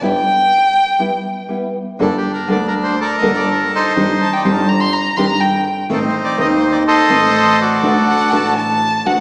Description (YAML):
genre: tango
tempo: 123 BPM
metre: 4/4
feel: rubato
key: G harmonic minor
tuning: A4 = 440 Hz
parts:
  - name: warm violin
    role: second line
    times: 0.0-9.2 s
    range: F#5 to C6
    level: -15 LUFS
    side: equal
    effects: none
  - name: nylon-string guitar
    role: accompaniment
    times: 0.0-9.2 s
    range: D3 to A4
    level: -19 LUFS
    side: equal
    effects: none
  - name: rich double bass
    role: bass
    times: 0.0-9.2 s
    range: G1 to Eb2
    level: -20 LUFS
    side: equal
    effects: none
  - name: bandoneon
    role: melody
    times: 2.0-8.5 s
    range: C4 to Eb5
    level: -15 LUFS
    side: equal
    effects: none
room: wet recital hall reverb, RT60 1.8 s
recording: recorded in a church or concert hall, small speaker sound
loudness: -12 LUFS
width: side -30 dB against mid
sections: 0.0-2.0 A section; 2.0-9.2 B section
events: violin solo 0.0-2.0; break 1.0-2.0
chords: 0.0 G6; 2.0 Gmadd9; 4.0 Cmadd9/G; 5.9 Adim; 7.8 D